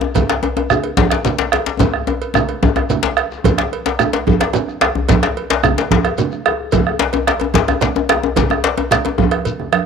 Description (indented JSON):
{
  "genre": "west african traditional, West African drum ensemble",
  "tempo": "146 BPM (dotted quarters)",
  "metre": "12/8",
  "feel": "straight",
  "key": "none",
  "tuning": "none",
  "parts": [
    { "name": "djembe", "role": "percussion", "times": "0.0-9.2 s", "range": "none", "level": "-18 LUFS", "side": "left 7 dB", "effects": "none" },
    { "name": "congas", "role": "percussion", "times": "0.1-9.9 s", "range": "none", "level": "-20 LUFS", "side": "right 8 dB", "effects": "none" },
    { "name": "bombo", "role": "percussion", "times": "0.2-9.9 s", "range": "none", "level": "-18 LUFS", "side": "right 5 dB", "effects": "none" },
    { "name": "cowbell", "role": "percussion", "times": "0.2-9.9 s", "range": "none", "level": "-26 LUFS", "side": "right 8 dB", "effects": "none" },
    { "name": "djembe", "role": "percussion", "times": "0.2-9.9 s", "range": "none", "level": "-23 LUFS", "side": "left 8 dB", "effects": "none" },
    { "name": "shekere", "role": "percussion", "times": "0.2-9.6 s", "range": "none", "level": "-24 LUFS", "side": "left 5 dB", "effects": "none" }
  ],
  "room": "light reverb, studio ambience",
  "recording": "1960s-style stereo with parts hard left and right",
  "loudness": "-14 LUFS",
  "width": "side -6 dB against mid",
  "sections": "0.0-3.5 A section; 3.5-9.9 B section",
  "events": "drum fill 1.8-3.5, 9.5-9.9",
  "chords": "none",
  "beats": "| 0.15 0.56 0.98 1.39 | 1.80 2.21 2.63 3.04 | 3.45 3.86 4.27 4.68 | 5.09 5.50 5.91 6.32 | 6.73 7.14 7.55 7.96 | 8.37 8.78 9.18 9.59"
}